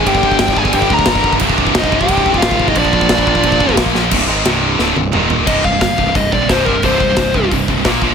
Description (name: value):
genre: heavy metal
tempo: 178 BPM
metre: 4/4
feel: straight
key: C minor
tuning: A4 = 440 Hz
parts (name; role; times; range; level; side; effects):
- high-gain lead guitar; melody; 0.0-7.5 s; Bb4 to Bb5; -17 LUFS; left 1 dB; distortion, ping-pong delay
- high-gain lead guitar; second line; 0.0-3.7 s; D4 to Bb4; -21 LUFS; right 2 dB; distortion
- heavy high-gain guitar; riff; 0.0-8.1 s; C2 to Bb3; -19 LUFS; right 13 dB; distortion
- scooped high-gain guitar; riff; 0.0-8.1 s; C2 to Bb3; -19 LUFS; left 17 dB; distortion
- scooped high-gain guitar; riff; 0.0-8.1 s; C2 to Bb3; -21 LUFS; equal; distortion
- growling picked electric bass; bass; 0.0-8.1 s; C1 to D2; -21 LUFS; equal; overdrive
- big rock drum kit; drums; 0.1-8.1 s; crash cymbal, hi-hat, kick drum, ride cymbal, snare drum, toms; -18 LUFS; equal; none
room: light reverb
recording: none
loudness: -11 LUFS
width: side -6 dB against mid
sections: 0.0-4.1 A section; 4.1-5.5 B section; 5.5-8.1 C section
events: drum fill 3.9, 4.8-5.5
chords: 0.1 G5; 1.4 Cm; 2.8 Bb; 4.1 Cm; 5.1 Eb5; 5.5 C5